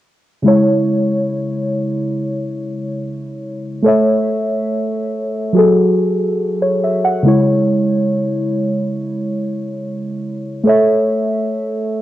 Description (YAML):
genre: hip hop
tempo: free time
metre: none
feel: none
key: C# minor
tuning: A4 = 437 Hz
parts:
  - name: muted felt-like synth keys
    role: accompaniment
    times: 0.4-12.0 s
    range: C#3 to F#5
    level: -14 LUFS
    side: equal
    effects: chorus
room: moderate booth ambience, RT60 0.2 s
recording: home recording on cassette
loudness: -14 LUFS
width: side -14 dB against mid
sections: 0.5-12.0 A section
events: synth keys fill 6.4-7.3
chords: 0.5 C#m; 3.9 A; 5.6 F#madd9; 7.3 C#m; 10.7 A